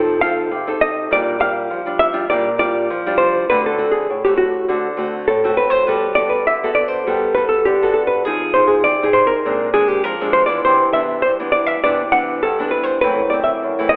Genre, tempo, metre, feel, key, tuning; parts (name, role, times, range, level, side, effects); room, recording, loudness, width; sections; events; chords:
samba; 101 BPM; 4/4; straight; G major; A4 = 440 Hz
hollow-body jazz guitar; melody; 0.0-14.0 s; F#4 to F#5; -19 LUFS; equal
nylon-string guitar; accompaniment; 0.0-14.0 s; F#2 to A4; -22 LUFS; equal
wet scoring stage reverb, RT60 1.6 s; recorded in a church or concert hall, telephone sound; -17 LUFS; mono
0.0-5.9 A section; 5.9-14.0 B section
0.0 F7; 1.1 Bb6; 3.5 D7; 5.9 Gmaj9; 8.3 Fm7; 9.4 Bb9; 10.6 Cmaj9; 13.0 F#m7b5